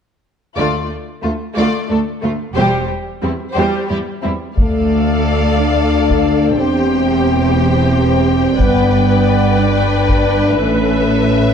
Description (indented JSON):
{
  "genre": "cinematic, epic orchestral film score",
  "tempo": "60 BPM (dotted quarters)",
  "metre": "6/8",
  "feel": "straight",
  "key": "D dorian",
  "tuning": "A4 = 443 Hz",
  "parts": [
    { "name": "warm symphonic violin section", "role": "melody", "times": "0.6-11.5 s", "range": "E4 to G5", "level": "-24 LUFS", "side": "left 5 dB", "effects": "none" },
    { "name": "warm symphonic violin section", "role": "second line", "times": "0.6-11.5 s", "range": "A3 to D5", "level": "-22 LUFS", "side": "left 4 dB", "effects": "none" },
    { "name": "rich studio viola section", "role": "accompaniment", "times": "0.6-11.5 s", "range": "G3 to B4", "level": "-21 LUFS", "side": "right 1 dB", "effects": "none" },
    { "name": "rich symphonic cello section", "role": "bass", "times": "0.6-11.5 s", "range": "D2 to A2", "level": "-19 LUFS", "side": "right 3 dB", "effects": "none" },
    { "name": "rich symphonic double bass section", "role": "bass", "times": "0.6-11.5 s", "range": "E1 to D2", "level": "-19 LUFS", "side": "right 2 dB", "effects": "none" },
    { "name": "mellow French horn section", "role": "sustained chords", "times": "4.6-11.5 s", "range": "A3 to D4", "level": "-16 LUFS", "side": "left 2 dB", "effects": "none" },
    { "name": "taiko ensemble", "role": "drums", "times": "4.6-10.4 s", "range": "none", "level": "-17 LUFS", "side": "equal", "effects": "none" }
  ],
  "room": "moderate scoring stage reverb, RT60 1.5 s",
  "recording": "dark, warm production",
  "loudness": "-13 LUFS",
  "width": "side -7 dB against mid",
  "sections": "0.6-4.6 A section; 4.6-11.5 B section",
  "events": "none",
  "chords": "0.6 Dm; 2.6 C/E; 4.6 Dm; 6.6 C/E; 8.6 G; 10.6 A"
}